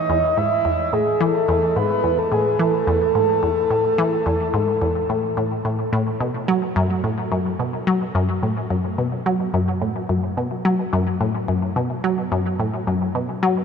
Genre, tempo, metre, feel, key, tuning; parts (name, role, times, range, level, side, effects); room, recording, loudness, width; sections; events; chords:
ambient, sequencer-driven space music; 108 BPM; 4/4; straight; A4 = 445 Hz
breathy flute-like synth lead; melody; 0.0-5.7 s; G#4 to E5; -20 LUFS; equal; wide subtle chorus, analog delay
resonant blip pluck; riff; 0.1-13.6 s; E2 to F#3; -20 LUFS; left 1 dB; chorus, vintage 12-bit sampler grit, analog delay
wet huge ambient reverb, RT60 7.8 s; -18 LUFS; side -6 dB against mid
0.0-6.2 A section; 6.2-13.6 B section
0.0 A5; 6.2 B5